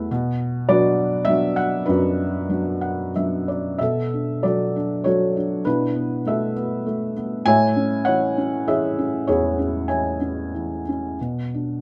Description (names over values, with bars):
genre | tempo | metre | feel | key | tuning
classical, lyrical solo piano | 90-104 BPM | 3/4 | rubato | B dorian | A4 = 439 Hz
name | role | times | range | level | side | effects
felt-muted upright piano | solo | 0.0-11.8 s | E2 to G#5 | -22 LUFS | equal | none
room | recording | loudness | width
moderate small room reverb, RT60 0.5 s | none | -22 LUFS | mono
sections
0.0-3.8 A section; 3.8-11.8 B section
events
felt piano fill 2.5-3.8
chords
0.1 Bm; 3.8 Bm7; 5.6 E7sus4/B; 7.4 Amaj7; 11.2 Bm